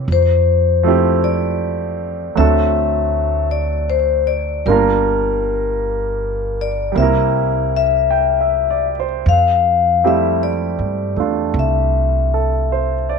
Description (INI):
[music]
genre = jazz ballad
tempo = 52 BPM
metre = 4/4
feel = swing 68% on 8ths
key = F major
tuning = A4 = 441 Hz
[part]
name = warm grand piano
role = accompaniment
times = 0.0-13.2 s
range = F3 to G5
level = -20 LUFS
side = right 13 dB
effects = none
[part]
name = upright bass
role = bass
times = 0.0-13.2 s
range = G1 to G2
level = -20 LUFS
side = right 2 dB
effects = none
[part]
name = vibraphone with soft mallets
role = melody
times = 0.1-13.2 s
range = Bb4 to F5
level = -17 LUFS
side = left 9 dB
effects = slapback echo
[sound]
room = moderate echo chamber reverb, RT60 1.4 s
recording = 1960s-style stereo with parts hard left and right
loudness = -14 LUFS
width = side -5 dB against mid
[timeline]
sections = 0.0-9.2 A section; 9.2-13.2 A section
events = none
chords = 0.1 Fmaj9; 2.4 D7; 4.6 Gm7; 6.9 C7; 9.2 Fmaj9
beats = | 0.06 1.21 2.35 3.50 | 4.65 5.80 6.95 8.10 | 9.25 10.40 11.55 12.70